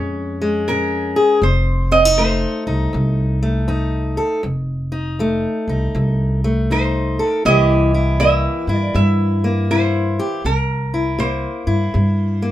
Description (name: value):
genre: acoustic country blues, solo or duo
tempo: 80 BPM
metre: 4/4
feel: swing 64% on 8ths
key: unclear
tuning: A4 = 444 Hz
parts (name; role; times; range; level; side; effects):
- lap resonator guitar; melody; 0.0-12.5 s; Bb4 to E5; -20 LUFS; right 3 dB; none
- fingerpicked steel-string acoustic guitar; accompaniment; 0.0-12.5 s; F2 to A4; -20 LUFS; left 2 dB; none
- upright bass; bass; 0.0-12.5 s; F1 to G2; -18 LUFS; equal; none
room: light reverb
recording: minimal, uncompressed stereo recording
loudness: -15 LUFS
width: side -13 dB against mid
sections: 0.0-12.5 A section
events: none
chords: 0.0 Bbm7; 1.4 F7; 7.4 C7